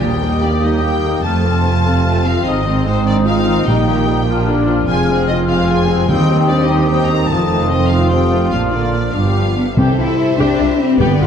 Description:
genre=cinematic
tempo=99 BPM (dotted quarters)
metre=6/8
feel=straight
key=Eb major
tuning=A4 = 440 Hz
part: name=clear symphonic violin section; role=melody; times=0.0-11.3 s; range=G4 to Bb5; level=-24 LUFS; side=left 2 dB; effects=none
part: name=hollow small flute group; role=second line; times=0.0-9.6 s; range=D6 to F6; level=-25 LUFS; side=left 6 dB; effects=none
part: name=mellow clarinet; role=second line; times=0.0-9.6 s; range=Bb3 to Eb4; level=-26 LUFS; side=left 2 dB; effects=none
part: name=rich studio violin section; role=second line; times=0.0-11.3 s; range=A3 to E5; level=-24 LUFS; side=left 4 dB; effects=none
part: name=warm symphonic viola section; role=accompaniment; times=0.0-11.3 s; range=C3 to G4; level=-23 LUFS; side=equal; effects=none
part: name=dark French horn section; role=sustained chords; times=0.0-11.3 s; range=B3 to Bb4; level=-22 LUFS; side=left 4 dB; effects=none
part: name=warm trombone section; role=sustained chords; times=0.0-11.3 s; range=C3 to C4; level=-24 LUFS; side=right 1 dB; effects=none
part: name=clear trumpet section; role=stabs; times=0.0-9.5 s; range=D4 to G4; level=-23 LUFS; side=left 1 dB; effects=none
part: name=rich studio cello section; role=bass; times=0.0-11.3 s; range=Eb2 to E4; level=-20 LUFS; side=right 2 dB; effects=none
part: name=rich studio double bass section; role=bass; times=0.0-11.3 s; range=F1 to Eb2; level=-19 LUFS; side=right 3 dB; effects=none
part: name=timpani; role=percussion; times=0.0-0.6, 3.7-6.7, 9.8-11.3 s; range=G2 to Eb3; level=-20 LUFS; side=equal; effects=none
room=wet scoring stage reverb, RT60 2.1 s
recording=dark, warm production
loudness=-12 LUFS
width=side -8 dB against mid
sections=0.0-9.8 A section; 9.8-11.3 B section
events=none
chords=0.0 Eb; 1.2 F; 2.5 Ab; 3.7 Eb/Bb; 4.3 Bb; 4.9 Fm; 6.1 Cm/Eb; 7.3 F7; 8.5 Bb; 9.1 G7; 9.8 C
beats=| 0.01 0.63 | 1.24 1.85 | 2.46 3.06 | 3.67 4.27 | 4.88 5.48 | 6.09 6.69 | 7.30 7.91 | 8.52 9.14 | 9.77 10.38 | 11.00

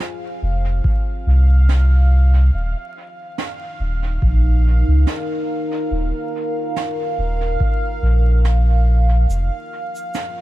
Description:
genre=ambient dub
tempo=71 BPM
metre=4/4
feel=swing 55% on 16ths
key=unclear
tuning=A4 = 440 Hz
part: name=deep dark ambient pad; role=sustained chords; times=0.0-10.4 s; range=Eb4 to Ab5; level=-27 LUFS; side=equal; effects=chorus, built-in reverb
part: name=snare drum and shaker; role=drums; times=0.0-10.3 s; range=none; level=-32 LUFS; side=right 4 dB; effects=dub echo
part: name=bubbling stepped-filter texture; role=texture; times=0.0-10.4 s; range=F5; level=-31 LUFS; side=right 2 dB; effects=chorus, built-in reverb
part: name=warm sub bass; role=bass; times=0.4-9.5 s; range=Eb1 to Db2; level=-14 LUFS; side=equal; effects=none
part: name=electronic kick drum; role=drums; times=0.8-7.8 s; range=none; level=-20 LUFS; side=equal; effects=overdrive
room=studio reverb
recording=vinyl crackle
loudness=-15 LUFS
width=side -16 dB against mid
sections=0.0-10.4 A section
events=none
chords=0.0 Fm; 2.5 Ebadd9; 9.3 F7(no3)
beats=0.00 0.85 1.69 | 2.54 3.38 4.23 5.07 | 5.92 6.76 7.61 8.45 | 9.30 10.14

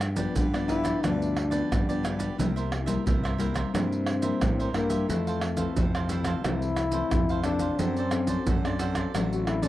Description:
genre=samba and choro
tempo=89 BPM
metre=4/4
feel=straight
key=F major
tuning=A4 = 440 Hz
part: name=cavaquinho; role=accompaniment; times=0.0-9.7 s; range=E4 to F5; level=-37 LUFS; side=right 6 dB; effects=none
part: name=nylon-string guitar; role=accompaniment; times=0.0-9.7 s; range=F2 to A4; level=-32 LUFS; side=left 4 dB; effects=none
part: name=fuzz fingered electric bass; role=bass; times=0.0-9.7 s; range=A1 to A2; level=-30 LUFS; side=right 1 dB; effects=overdrive
part: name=maracas, pandeiro, tamborim and surdo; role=percussion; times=0.0-9.7 s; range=none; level=-29 LUFS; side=right 2 dB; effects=none
part: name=warm trombone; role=second line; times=0.7-9.7 s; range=A3 to F#4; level=-30 LUFS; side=left 3 dB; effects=none
room=small room ambience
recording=dry, close 1970s-style studio recording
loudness=-24 LUFS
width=side -14 dB against mid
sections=0.0-9.7 A section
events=trombone solo 0.0-9.7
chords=0.0 G7; 2.4 C7; 5.1 Fmaj7; 7.8 D7/F#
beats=0.36 1.04 1.72 | 2.39 3.07 3.74 4.42 | 5.09 5.77 6.45 7.12 | 7.80 8.47 9.15

